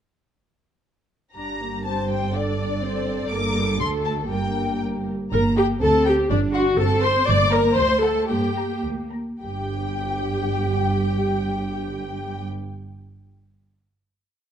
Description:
quick classical-period movement for string orchestra; 103-126 BPM; 2/4; rubato; G minor; A4 = 440 Hz
warm studio violin section; melody; 1.4-12.4 s; D5 to D6; -31 LUFS; left 5 dB
warm studio viola section; accompaniment; 1.4-12.4 s; G3 to D5; -23 LUFS; left 1 dB
warm studio cello section; bass; 1.4-12.4 s; D2 to D4; -27 LUFS; right 2 dB
warm studio double bass section; bass; 1.4-12.5 s; G1 to G2; -27 LUFS; right 3 dB
warm studio violin section; second line; 1.9-12.4 s; A4 to D6; -30 LUFS; left 3 dB
moderate recital hall reverb, RT60 1.5 s; dark, warm production; -20 LUFS; side -9 dB against mid
1.4-5.3 A section; 5.3-9.4 A section; 9.4-11.7 final note
slowing down 6.8-9.4
1.4 Gm; 2.3 D5/G; 3.3 Gm; 3.8 D5; 4.3 Gm; 6.3 Gsus24; 7.3 Gm; 7.8 D7; 8.3 Gm; 9.4 N.C.
| 1.35 1.85 | 2.34 2.82 | 3.30 3.79 | 4.30 4.81 | 5.32 5.81 | 6.30 6.79 | 7.28 7.77 | 8.29 8.84 | 9.42 9.99 | 10.56 11.12

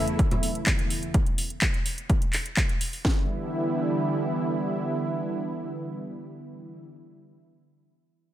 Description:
progressive house; 126 BPM; 4/4; straight; E dorian; A4 = 440 Hz
lush unison pad; sustained chords; 0.0-6.8 s; E2 to E4; -28 LUFS; right 1 dB; chorus, sidechain pumping
house drum kit; drums; 0.1-3.0 s; handclaps, hi-hat; -29 LUFS; equal; overdrive, sidechain pumping on hats, sidechain pumping on cymbals
house drum kit; drums; 0.2-3.2 s; kick drum, snare drum; -24 LUFS; equal; overdrive
congas; percussion; 0.3-0.8 s; -34 LUFS; left 1 dB; sidechain pumping on perc
light reverb; -24 LUFS; side -12 dB against mid
0.0-3.0 A section; 3.0-6.9 B section
0.0 Aadd9/E; 3.0 Em7
0.19 0.67 | 1.14 1.62 2.10 2.57 | 3.05 3.52 4.00 4.48 | 4.95 5.43 5.91 6.38

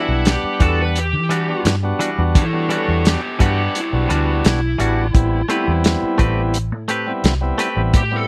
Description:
straight-eighth soul blues; 86 BPM; 4/4; straight; E minor; A4 = 440 Hz
lead guitar through a small cranked amp; melody; 0.0-8.3 s; G3 to B4; -26 LUFS; equal; overdrive
tonewheel organ; accompaniment; 0.0-8.3 s; G3 to F#5; -26 LUFS; equal; overdrive
direct-recorded clean electric guitar; stabs; 0.0-7.8 s; E3 to B4; -25 LUFS; equal
vintage muted fingered electric bass; bass; 0.1-8.3 s; A1 to E3; -22 LUFS; equal
warm soul drum kit; drums; 0.3-8.1 s; hi-hat, kick drum, snare drum; -19 LUFS; equal
little or no reverb; -18 LUFS; mono
0.0-8.3 A section
0.0 Em9; 5.1 Am9
0.26 0.95 1.65 | 2.35 3.05 3.75 4.45 | 5.14 5.84 6.54 7.24 | 7.94

